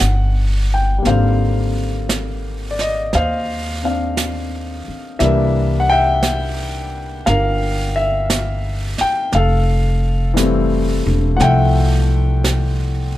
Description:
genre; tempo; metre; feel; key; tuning
jazz ballad; 58 BPM; 4/4; swing 68% on 8ths; F major; A4 = 439 Hz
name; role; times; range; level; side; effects
warm concert grand piano; accompaniment; 0.0-13.2 s; D3 to G5; -19 LUFS; left 2 dB; none
upright bass; bass; 0.0-13.2 s; E1 to Eb2; -18 LUFS; equal; none
jazz brush drum kit; drums; 0.0-13.2 s; brushed snare drum, hi-hat, snare drum; -25 LUFS; right 3 dB; none
room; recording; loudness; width
little or no reverb; close, detailed microphones; -15 LUFS; side -14 dB against mid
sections
0.0-13.2 A section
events
none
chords
0.0 A13 (rootless); 1.0 Abmaj9#11; 5.2 C7; 9.3 Fmaj7

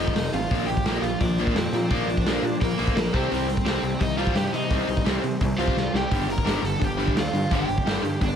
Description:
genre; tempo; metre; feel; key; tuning
punk rock; 171 BPM; 4/4; straight; unclear; A4 = 440 Hz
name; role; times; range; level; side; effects
overdriven electric guitar; melody; 0.0-8.4 s; Bb3 to Bb5; -29 LUFS; right 2 dB; tape echo
overdriven electric guitar; riff; 0.0-8.4 s; F2 to C4; -26 LUFS; left 1 dB; none
fuzz picked electric bass; bass; 0.0-8.3 s; F1 to C3; -29 LUFS; equal; overdrive
raw garage drum kit; drums; 0.1-8.3 s; hi-hat, kick drum, snare drum; -26 LUFS; equal; none
room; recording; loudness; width
little or no reverb; none; -21 LUFS; side -8 dB against mid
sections
0.0-8.4 A section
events
drum fill 5.8-6.1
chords
0.0 F; 0.5 Bb; 3.1 Cm; 6.1 Gm

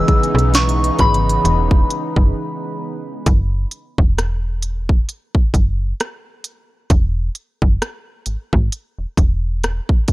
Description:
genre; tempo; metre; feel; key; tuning
contemporary R&B; 66 BPM; 4/4; swing 58% on 16ths; unclear; A4 = 440 Hz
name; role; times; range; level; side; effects
soft synth bell; melody; 0.0-2.8 s; B5 to E6; -21 LUFS; left 1 dB; chorus, analog delay
warm analog keys; accompaniment; 0.0-3.3 s; E3 to B4; -24 LUFS; equal; chorus
lush unison pad; sustained chords; 0.0-3.2 s; C#3 to D#4; -25 LUFS; equal; chorus, phaser
slap-like FM bass; bass; 0.0-9.8 s; E1 to B1; -18 LUFS; equal; none
trap drum kit; drums; 0.1-10.1 s; hi-hat, kick drum, rim click, snare drum; -15 LUFS; equal; none
room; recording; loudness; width
little or no reverb; dry, gritty hardware recording; -15 LUFS; side -18 dB against mid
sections
0.0-3.3 A section; 3.3-10.1 B section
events
break 2.4-3.3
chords
0.0 C#m9; 3.3 Esus2; 6.9 N.C.

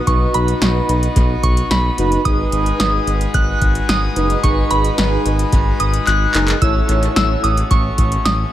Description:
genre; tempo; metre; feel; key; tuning
synth-pop; 110 BPM; 4/4; straight; unclear; A4 = 436 Hz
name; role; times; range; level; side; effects
soft synth bell; melody; 0.0-8.5 s; B5 to F#6; -20 LUFS; right 1 dB; chorus, phaser, dub echo
pipe organ, full organ; sustained chords; 0.0-8.5 s; G#3 to B4; -26 LUFS; left 1 dB; none
analog synth brass; accompaniment; 0.1-7.5 s; D#4 to C#5; -23 LUFS; equal; chorus, dub echo
smooth synth bass; bass; 0.1-8.4 s; F#1 to B1; -18 LUFS; equal; none
electro analog drum machine; drums; 0.1-8.4 s; handclaps, hi-hat, kick drum, snare drum; -18 LUFS; equal; overdrive, dub echo
room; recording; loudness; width
light reverb; echo-heavy mix, faint mains hum; -13 LUFS; side -12 dB against mid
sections
0.0-8.5 A section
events
drum fill 6.1-6.6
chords
0.0 B; 2.3 G#m7; 6.6 A6

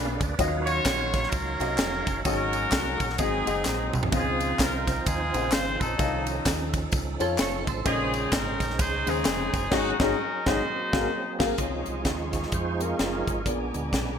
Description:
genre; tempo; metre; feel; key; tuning
uptempo gospel; 129 BPM; 4/4; swing 60% on 8ths; Db major; A4 = 437 Hz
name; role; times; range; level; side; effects
dark upright piano; accompaniment; 0.0-14.2 s; Ab2 to F5; -30 LUFS; left 4 dB; wide subtle chorus
percussive tonewheel organ; sustained chords; 0.0-14.2 s; Db3 to F5; -34 LUFS; right 4 dB; fast rotary speaker, chorus vibrato
deep dub fingered electric bass; bass; 0.0-14.2 s; F1 to F2; -33 LUFS; right 1 dB; none
crisp fusion drum kit; drums; 0.2-14.1 s; crash cymbal, hi-hat, kick drum, ride cymbal, snare drum, toms; -28 LUFS; equal; gated reverb
tambourine and handclaps; percussion; 0.2-9.6 s; none; -37 LUFS; left 3 dB; none
clear horn section; melody; 0.7-11.4 s; C4 to Db5; -28 LUFS; equal; ping-pong delay
clean electric guitar; second line; 7.2-8.1 s; F4 to Db5; -33 LUFS; right 8 dB; ensemble chorus
muted studio string section; sustained chords; 11.6-14.2 s; F5 to D6; -39 LUFS; left 1 dB; none
room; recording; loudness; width
light reverb, small room ambience; bright 1980s-style digital production; -24 LUFS; side -7 dB against mid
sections
0.0-11.6 A section; 11.6-14.2 B section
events
tonewheel organ fill 0.0-0.4; drum fill 3.7-4.1; band accent 9.7-11.6; tonewheel organ solo 11.6-14.2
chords
0.4 Ebm9; 2.3 Ab7sus4; 3.2 Ab7; 4.1 Dbmaj9; 6.0 F7b13/C; 7.9 Bbm11; 9.7 Ab7sus4; 10.7 Ab9; 11.6 Dbmaj7; 13.5 Bb7b9

